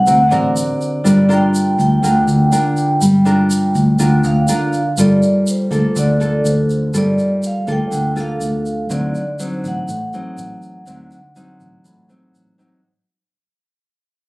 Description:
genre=bossa nova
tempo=122 BPM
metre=4/4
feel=straight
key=G minor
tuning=A4 = 440 Hz
part: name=vibraphone with medium mallets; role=melody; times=0.0-12.3 s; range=C5 to G5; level=-20 LUFS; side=equal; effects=none
part: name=nylon-string guitar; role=accompaniment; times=0.0-12.8 s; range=A2 to Bb4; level=-16 LUFS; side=equal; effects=none
part: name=fingered electric bass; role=bass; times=0.0-12.8 s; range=G1 to D2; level=-18 LUFS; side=equal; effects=none
part: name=tube shaker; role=percussion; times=0.1-12.8 s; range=none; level=-29 LUFS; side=right 1 dB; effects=none
part: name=warm concert grand piano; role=accompaniment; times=0.3-1.3 s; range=D5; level=-26 LUFS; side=right 2 dB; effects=none
room=light reverb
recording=recorded on a phone in the room, club reverb, compression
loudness=-13 LUFS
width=side -23 dB against mid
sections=0.0-5.0 A section; 5.0-12.8 B section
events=fade-out 5.0-12.8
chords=0.1 D7b13; 1.0 Gm7; 5.0 Gm9; 8.9 D7b9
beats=0.06 0.56 | 1.05 1.54 2.03 2.52 | 3.01 3.50 3.99 4.48 | 4.97 5.46 5.96 6.45 | 6.94 7.43 7.92 8.41 | 8.90 9.39 9.89 10.38 | 10.87 11.36 11.85 12.34

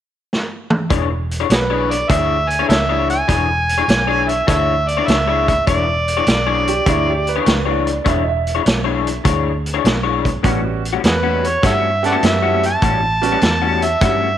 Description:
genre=electric blues shuffle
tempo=101 BPM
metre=4/4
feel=swing 68% on 8ths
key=E mixolydian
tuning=A4 = 441 Hz
part: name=vintage drum kit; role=drums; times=0.3-14.2 s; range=hi-hat, kick drum, snare drum, toms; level=-19 LUFS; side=right 1 dB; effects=none
part: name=electric guitar through a small old amp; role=riff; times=0.9-14.3 s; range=A2 to C#5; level=-21 LUFS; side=left 10 dB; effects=analog chorus
part: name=vintage muted fingered electric bass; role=bass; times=0.9-14.4 s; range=E1 to G2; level=-22 LUFS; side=right 1 dB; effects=none
part: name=overdriven harmonica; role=melody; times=1.5-7.4, 11.1-14.4 s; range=F#4 to A5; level=-18 LUFS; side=right 2 dB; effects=none
part: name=warm upright piano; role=second line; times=6.7-10.0 s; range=E4 to E5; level=-24 LUFS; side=right 9 dB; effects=none
part: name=bright upright piano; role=accompaniment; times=10.4-13.4 s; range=G3 to A4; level=-24 LUFS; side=right 9 dB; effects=none
room=light reverb, small room ambience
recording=1960s-style stereo with parts hard left and right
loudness=-14 LUFS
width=side -10 dB against mid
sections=0.9-14.4 A section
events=drum fill 0.3-0.9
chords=0.0 N.C.; 0.9 E6; 10.4 A13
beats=0.31 | 0.91 1.50 2.10 2.69 | 3.29 3.88 4.48 5.08 | 5.67 6.27 6.86 7.46 | 8.05 8.65 9.25 9.84 | 10.44 11.04 11.63 12.23 | 12.82 13.42 14.02

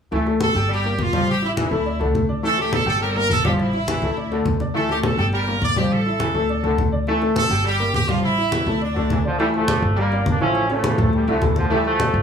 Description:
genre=latin, salsa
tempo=207 BPM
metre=4/4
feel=straight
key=D harmonic minor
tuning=A4 = 441 Hz
part: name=bright trombone section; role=second line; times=0.1-12.0 s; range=D3 to A3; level=-26 LUFS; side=left 1 dB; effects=none
part: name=bright upright piano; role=accompaniment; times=0.1-12.2 s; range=C#3 to E6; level=-24 LUFS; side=left 2 dB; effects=none
part: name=upright bass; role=bass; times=0.1-12.2 s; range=G1 to D2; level=-24 LUFS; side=equal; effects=none
part: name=congas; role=percussion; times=0.1-12.1 s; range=none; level=-25 LUFS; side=equal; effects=none
part: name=brilliant horn section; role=melody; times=0.4-9.2 s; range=D4 to D5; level=-23 LUFS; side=right 2 dB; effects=none
part: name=bright trombone section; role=melody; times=9.1-12.2 s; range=A2 to D4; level=-22 LUFS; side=right 1 dB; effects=none
room=wet small room reverb, RT60 0.5 s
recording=small room ambience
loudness=-18 LUFS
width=side -7 dB against mid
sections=0.1-9.4 A section; 9.4-12.2 B section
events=none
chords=0.1 Dsus2; 0.7 Gmadd9; 1.3 A5; 1.9 Dsus2; 3.0 Gmadd9; 3.6 A5; 4.2 Dsus2; 5.3 Gmadd9; 5.9 A5; 6.5 Dsus2; 7.7 Gmadd9; 8.2 A5; 8.8 D5; 9.4 Dmadd9; 10.0 Gmadd9; 10.6 A; 11.1 Dmadd9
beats=| 0.12 0.41 0.70 0.99 | 1.28 1.57 1.86 2.15 | 2.44 2.73 3.01 3.30 | 3.59 3.88 4.17 4.46 | 4.75 5.04 5.33 5.62 | 5.91 6.20 6.49 6.78 | 7.07 7.36 7.65 7.94 | 8.23 8.52 8.81 9.10 | 9.39 9.68 9.97 10.26 | 10.55 10.84 11.13 11.42 | 11.71 12.00

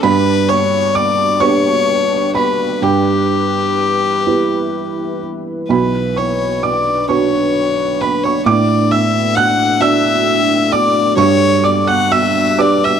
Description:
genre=neoclassical piano and strings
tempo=43 BPM (dotted quarters)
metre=6/8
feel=uneven beats, rubato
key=unclear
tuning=A4 = 440 Hz
part: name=rich violin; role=melody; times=0.0-13.0 s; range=G4 to F#5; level=-16 LUFS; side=left 6 dB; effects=none
part: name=felt-muted upright piano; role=accompaniment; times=0.0-13.0 s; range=B1 to F#6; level=-15 LUFS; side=right 6 dB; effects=none
part: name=deep dark ambient pad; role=sustained chords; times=0.0-13.0 s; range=D4 to B4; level=-22 LUFS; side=equal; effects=chorus, built-in reverb
room=studio reverb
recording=dry, close 1970s-style studio recording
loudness=-12 LUFS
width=side -8 dB against mid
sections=0.0-13.0 A section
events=none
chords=0.0 G; 2.8 Em/G; 5.7 Bmadd9; 8.5 D/A; 11.2 G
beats=| 0.04 1.41 | 2.83 4.26 | 5.70 7.09 | 8.46 9.80 | 11.17 12.59

